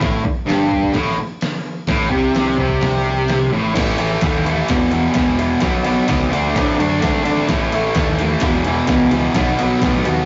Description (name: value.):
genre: garage rock duo or trio.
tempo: 129 BPM.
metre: 4/4.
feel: straight.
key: unclear.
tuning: A4 = 440 Hz.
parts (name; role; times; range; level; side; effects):
fuzz guitar; riff; 0.0-10.3 s; E2 to D4; -19 LUFS; equal; distortion.
growling picked electric bass; bass; 0.0-10.3 s; E1 to A2; -26 LUFS; equal; overdrive.
trip hop sampler-style drum kit; drums; 0.0-10.2 s; crash cymbal, hi-hat, kick drum, ride cymbal, snare drum; -24 LUFS; equal; none.
room: wet studio reverb, RT60 0.6 s.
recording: rough rehearsal-room recording, warm saturation, nothing above 7.6 kHz.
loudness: -17 LUFS.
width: mono.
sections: 0.0-3.8 A section; 3.8-10.3 B section.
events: none.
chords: 0.0 Gsus24; 3.8 A5; 4.7 E5; 5.6 B5; 6.3 D; 7.5 A5; 8.4 E5; 9.4 B.